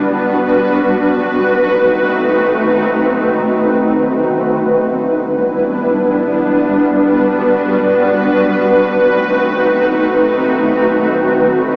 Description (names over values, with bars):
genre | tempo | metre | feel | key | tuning
hip hop | free time | none | none | E minor | A4 = 440 Hz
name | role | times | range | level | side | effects
granular cloud pad | solo | 0.0-11.8 s | G3 to B4 | -11 LUFS | equal | built-in reverb
room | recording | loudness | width
wet plate reverb, RT60 2.5 s | dreamy mix soaked in reverb, small speaker sound | -11 LUFS | side -34 dB against mid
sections
0.0-11.8 A section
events
none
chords
0.0 Em7 (rootless); 0.7 B7b9; 4.5 Em7; 8.3 B7b9